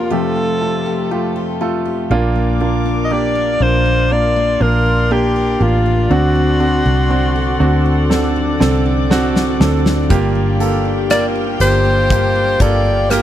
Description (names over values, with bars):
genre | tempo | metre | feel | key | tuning
pop ballad | 60 BPM | 4/4 | straight | Bb major | A4 = 440 Hz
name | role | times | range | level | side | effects
bright alto saxophone | melody | 0.0-13.2 s | F4 to Eb5 | -17 LUFS | left 1 dB | none
clear baby grand piano | accompaniment | 0.0-13.2 s | F1 to Bb4 | -18 LUFS | right 4 dB | none
warm chamber string section | sustained chords | 0.0-13.2 s | C3 to D6 | -25 LUFS | left 2 dB | none
picked steel-string acoustic guitar | arpeggios | 0.0-13.2 s | G2 to Bb4 | -24 LUFS | left 15 dB | none
vintage muted fingered electric bass | bass | 2.1-13.2 s | G1 to D2 | -17 LUFS | equal | none
huge arena drum kit | drums | 8.1-13.2 s | hi-hat, kick drum, rim click, snare drum | -20 LUFS | left 1 dB | none
room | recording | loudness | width
little or no reverb | none | -13 LUFS | side -11 dB against mid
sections
0.0-2.1 A section; 2.1-13.2 B section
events
drum fill 8.1-10.1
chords
0.1 Fadd9; 2.1 Bb; 6.1 D7; 10.1 Gm7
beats
0.11 1.11 | 2.11 3.11 4.11 5.11 | 6.11 7.11 8.11 9.11 | 10.11 11.11 12.11 13.11